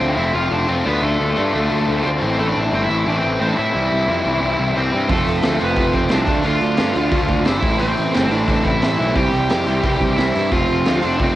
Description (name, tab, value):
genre	punk rock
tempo	177 BPM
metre	4/4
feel	straight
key	A minor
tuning	A4 = 439 Hz
part	high-gain lead guitar	melody	0.0-11.4 s	A3 to G5	-21 LUFS	right 1 dB	distortion, cassette tape, tape echo
part	crunchy overdriven guitar	riff	0.0-11.4 s	A2 to F4	-21 LUFS	left 3 dB	cassette tape
part	fuzz picked electric bass	bass	0.0-11.3 s	F1 to A2	-22 LUFS	equal	overdrive
part	overdriven electric guitar	riff	5.1-11.4 s	F2 to D4	-24 LUFS	right 7 dB	cassette tape
part	raw garage drum kit	drums	5.1-11.3 s	hi-hat, kick drum, snare drum	-22 LUFS	equal	cassette tape
room	small room ambience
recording	home recording on cassette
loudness	-15 LUFS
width	side -14 dB against mid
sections	0.0-11.4 A section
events	none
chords	0.0 F; 0.8 Dm; 2.2 Am; 3.7 C; 5.1 F; 6.3 Dm; 7.6 Am; 9.2 C; 10.5 F